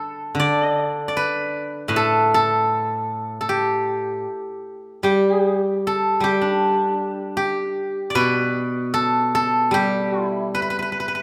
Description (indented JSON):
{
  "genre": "chinese traditional, Chinese solo plucked strings",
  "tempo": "77 BPM",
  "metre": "2/4",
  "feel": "rubato",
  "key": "G gong mode",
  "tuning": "A4 = 440 Hz",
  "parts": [
    { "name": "steel-string zither", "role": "solo", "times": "0.0-11.2 s", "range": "A2 to D5", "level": "-21 LUFS", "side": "equal", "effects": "none" }
  ],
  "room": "moderate scoring stage reverb, RT60 2.0 s",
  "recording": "none",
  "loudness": "-21 LUFS",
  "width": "mono",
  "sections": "0.0-5.1 A section; 5.1-11.2 B section",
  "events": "none",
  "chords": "none"
}